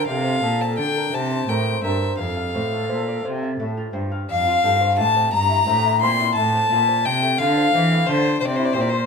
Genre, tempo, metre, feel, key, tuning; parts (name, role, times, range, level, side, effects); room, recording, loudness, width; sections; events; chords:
classical, baroque-style sonata movement with continuo; 58 BPM (dotted quarters); 6/8; straight; F major; A4 = 440 Hz
rich violin; melody; 0.0-9.1 s; C5 to C6; -22 LUFS; left 5 dB
mellow baroque flute; second line; 0.0-9.1 s; A4 to C6; -23 LUFS; left 1 dB
lute; accompaniment; 0.0-9.1 s; F2 to F5; -27 LUFS; equal
warm cello; bass; 0.0-9.1 s; F2 to E3; -23 LUFS; right 1 dB
moderate stone room reverb, RT60 1.3 s; minimal, uncompressed stereo recording; -18 LUFS; side -5 dB against mid
0.0-4.3 A section; 4.3-9.1 B section
0.1 F; 1.1 C5; 2.2 F; 5.3 C7/G; 6.4 F/A; 8.4 C